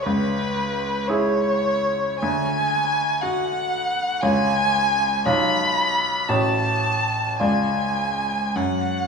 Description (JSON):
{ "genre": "classical, romantic duo for violin and grand piano", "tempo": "50-61 BPM (dotted quarters)", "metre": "6/8", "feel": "rubato", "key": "unclear", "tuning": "A4 = 440 Hz", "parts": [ { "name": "warm violin", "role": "melody", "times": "0.0-9.1 s", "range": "B4 to B5", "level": "-22 LUFS", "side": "equal", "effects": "none" }, { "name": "bright grand piano", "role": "accompaniment", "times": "0.0-9.1 s", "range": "A1 to D5", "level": "-23 LUFS", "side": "equal", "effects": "none" } ], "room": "moderate scoring stage reverb, RT60 1.8 s", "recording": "studio ambience", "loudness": "-19 LUFS", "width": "side -5 dB against mid", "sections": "0.0-9.1 A section", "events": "none", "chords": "0.1 C#m; 2.2 D; 4.2 C#; 5.3 C#7/B; 6.3 F#m/A; 7.4 C#; 8.6 F#5", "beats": "| 0.05 1.08 | 2.21 3.22 | 4.22 5.25 | 6.30 7.40 | 8.56" }